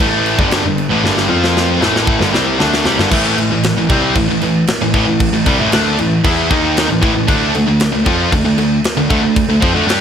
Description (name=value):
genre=heavy metal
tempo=115 BPM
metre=4/4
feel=straight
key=A minor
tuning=A4 = 439 Hz
part: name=distorted electric guitar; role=riff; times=0.0-10.0 s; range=G2 to G4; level=-16 LUFS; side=right 9 dB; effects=overdrive
part: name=heavy high-gain guitar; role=riff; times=0.0-10.0 s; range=G2 to G4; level=-17 LUFS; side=left 11 dB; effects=distortion
part: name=dark baby grand piano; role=bass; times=0.0-10.0 s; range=G1 to G2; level=-19 LUFS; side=left 1 dB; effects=none
part: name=tight metal drum kit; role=drums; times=0.0-10.0 s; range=crash cymbal, kick drum, snare drum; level=-17 LUFS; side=equal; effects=none
room=little or no reverb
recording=none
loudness=-11 LUFS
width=side -8 dB against mid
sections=0.0-3.1 A section; 3.1-10.0 B section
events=drum fill 1.0-3.1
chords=0.0 G5; 1.3 F5; 1.8 G5; 3.1 Am; 7.3 D5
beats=0.00 0.52 | 1.04 1.56 2.08 2.60 | 3.12 3.64 4.16 4.68 | 5.20 5.72 6.24 6.76 | 7.28 7.80 8.32 8.84 | 9.36 9.88